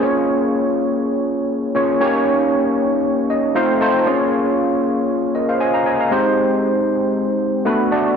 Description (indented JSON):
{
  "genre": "pop",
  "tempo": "117 BPM",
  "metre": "4/4",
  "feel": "swing 54% on 16ths",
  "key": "Bb dorian",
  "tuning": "A4 = 441 Hz",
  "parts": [
    { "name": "overdriven tine electric piano", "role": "solo", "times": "0.0-8.2 s", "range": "Ab3 to Bb5", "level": "-15 LUFS", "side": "equal", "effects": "analog chorus" }
  ],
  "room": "moderate plate reverb, RT60 3.4 s",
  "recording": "none",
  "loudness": "-15 LUFS",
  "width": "side -6 dB against mid",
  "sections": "0.0-8.2 A section",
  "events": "tine electric piano fill 3.0-4.1",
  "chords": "0.0 Bbm7; 2.0 Eb7; 3.6 F7; 4.1 Bbm7; 6.1 Abmaj7; 7.7 Bm7"
}